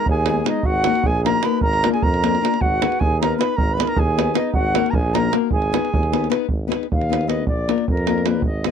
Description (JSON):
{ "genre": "balkan folk, Balkan wedding band", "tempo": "308 BPM (eighths)", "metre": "5/8", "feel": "straight", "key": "Ab dorian sharp4", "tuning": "A4 = 441 Hz", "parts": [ { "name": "bright reedy baroque flute", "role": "melody", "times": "0.0-8.7 s", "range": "Bb4 to Cb6", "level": "-23 LUFS", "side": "equal", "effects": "none" }, { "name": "mellow accordion", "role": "second line", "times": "0.0-6.3 s", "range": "Eb4 to Cb5", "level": "-26 LUFS", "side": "right 9 dB", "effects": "none" }, { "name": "nylon-string guitar", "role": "accompaniment", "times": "0.0-8.7 s", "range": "Ab3 to Cb5", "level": "-22 LUFS", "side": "left 18 dB", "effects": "none" }, { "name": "clear tuba", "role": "bass", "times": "0.1-8.7 s", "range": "Ab1 to F2", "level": "-24 LUFS", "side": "equal", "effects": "none" }, { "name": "davul", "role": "percussion", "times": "0.1-8.7 s", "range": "none", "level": "-22 LUFS", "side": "right 3 dB", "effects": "none" } ], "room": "little or no reverb", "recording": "dry, close 1970s-style studio recording", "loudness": "-17 LUFS", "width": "side -7 dB against mid", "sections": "0.0-6.5 A section; 6.5-8.7 B section", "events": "flute solo 6.5-8.7", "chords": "0.0 Abm; 0.6 Ebm/Ab; 1.6 Bb/Ab; 2.6 Abm; 4.6 Ebm/Ab; 5.5 Abm; 7.5 Bb" }